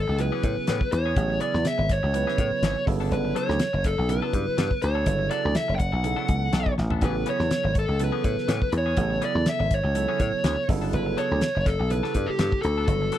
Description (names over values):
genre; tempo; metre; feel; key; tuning
electric jazz fusion; 123 BPM; 4/4; swing 54% on 16ths; A major; A4 = 439 Hz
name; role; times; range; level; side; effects
dark smooth lead guitar; melody; 0.0-13.2 s; G4 to G5; -27 LUFS; equal; overdrive
dry thumbed slap bass; bass; 0.0-13.1 s; F#1 to A2; -26 LUFS; equal; none
semi-hollow electric guitar; stabs; 0.1-13.2 s; E3 to A4; -35 LUFS; left 15 dB; lush chorus
barky tine electric piano; accompaniment; 0.2-13.2 s; C#3 to B4; -31 LUFS; right 8 dB; overdrive, phaser
damped 70s drum kit; drums; 0.2-13.2 s; hi-hat, kick drum, snare drum, toms; -26 LUFS; left 1 dB; none
room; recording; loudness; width
little or no reverb; dry, close 1970s-style studio recording; -22 LUFS; side -12 dB against mid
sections
0.0-13.2 A section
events
drum fill 6.8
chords
0.0 Amaj9; 2.9 Gmaj9; 7.0 Amaj9; 10.7 Gmaj9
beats
0.19 0.68 | 1.17 1.66 2.14 2.63 | 3.12 3.60 4.09 4.58 | 5.07 5.56 6.04 6.53 | 7.02 7.51 8.00 8.49 | 8.98 9.46 9.95 10.44 | 10.93 11.42 11.91 12.39 | 12.88